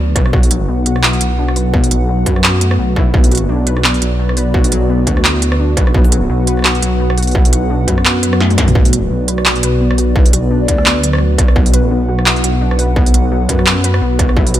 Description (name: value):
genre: half-time drum and bass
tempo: 171 BPM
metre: 4/4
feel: swing 56% on 16ths, half-time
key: B minor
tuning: A4 = 439 Hz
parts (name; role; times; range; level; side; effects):
- dark analog pad; sustained chords; 0.0-14.6 s; B3 to F#5; -20 LUFS; equal; chorus, sidechain pumping
- warbly dusty pluck; arpeggios; 0.0-14.6 s; F#3 to B4; -21 LUFS; left 3 dB; chorus, dub echo
- dark detuned saw bass; bass; 0.0-14.6 s; B1 to F#2; -15 LUFS; equal; none
- electronic kick drum; drums; 0.2-14.4 s; none; -13 LUFS; equal; distortion
- industrial drum kit; drums; 0.2-14.6 s; handclaps, hi-hat, rim click, snare drum, toms; -16 LUFS; right 1 dB; none
- mellow hollow concert flute; melody; 10.6-11.1 s; D5; -25 LUFS; equal; vintage 12-bit sampler grit, dub echo
room: light reverb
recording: none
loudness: -10 LUFS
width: side -12 dB against mid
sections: 0.0-14.6 A section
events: drum fill 8.4-8.8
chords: 0.0 Bm